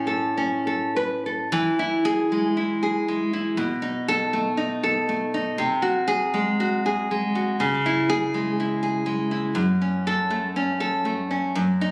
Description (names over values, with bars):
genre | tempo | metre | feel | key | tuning
romantic piece for solo classical guitar | 60 BPM | 2/4 | uneven beats, rubato | E major | A4 = 440 Hz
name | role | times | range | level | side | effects
nylon-string guitar | solo | 0.0-11.9 s | F#2 to B4 | -24 LUFS | equal | none
room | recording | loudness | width
moderate recital hall reverb, RT60 1.4 s | recorded on a phone in the room, club reverb | -24 LUFS | mono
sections
0.0-1.5 A section; 1.5-11.9 B section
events
none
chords
0.0 A; 1.5 E; 3.6 B7; 5.6 G#7/B#; 7.6 C#m; 9.6 F#m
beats
0.39 | 1.52 2.57 | 3.58 4.59 | 5.58 6.60 | 7.62 8.60 | 9.57 10.56 | 11.55